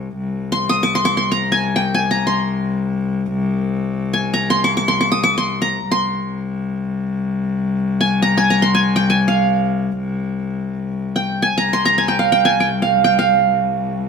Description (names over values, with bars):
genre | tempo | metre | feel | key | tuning
Arabic maqam ensemble | free time | none | none | C maqam bayati | A4 = 441 Hz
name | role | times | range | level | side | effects
clear cello | drone | 0.0-14.1 s | C2 | -20 LUFS | left 3 dB | none
qanun | melody | 0.5-14.1 s | F5 to Eb6 | -16 LUFS | right 2 dB | none
room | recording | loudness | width
wet studio reverb, RT60 0.9 s | band playing live in one room | -16 LUFS | side -6 dB against mid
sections
0.2-14.1 A section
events
none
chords
none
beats
free time